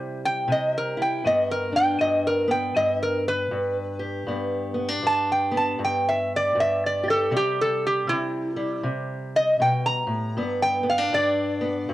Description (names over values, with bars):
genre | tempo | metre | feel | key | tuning
acoustic country blues, solo or duo | 79 BPM | 4/4 | swing 62% on 8ths | unclear | A4 = 442 Hz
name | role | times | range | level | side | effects
fingerpicked steel-string acoustic guitar | accompaniment | 0.0-11.9 s | G2 to G4 | -27 LUFS | left 1 dB | cassette tape, plate reverb
lap resonator guitar | melody | 0.3-11.9 s | E4 to Bb5 | -22 LUFS | equal | cassette tape, plate reverb
room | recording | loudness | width
moderate booth ambience, RT60 0.2 s | home recording on cassette | -21 LUFS | side -15 dB against mid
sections
0.0-11.9 A section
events
resonator guitar played with a steel bar solo 0.0-11.9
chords
0.0 C; 1.2 G; 7.3 C; 10.4 G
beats
0.48 | 1.25 2.01 2.77 3.53 | 4.29 5.05 5.80 6.56 | 7.32 8.08 8.84 9.60 | 10.36 11.12 11.88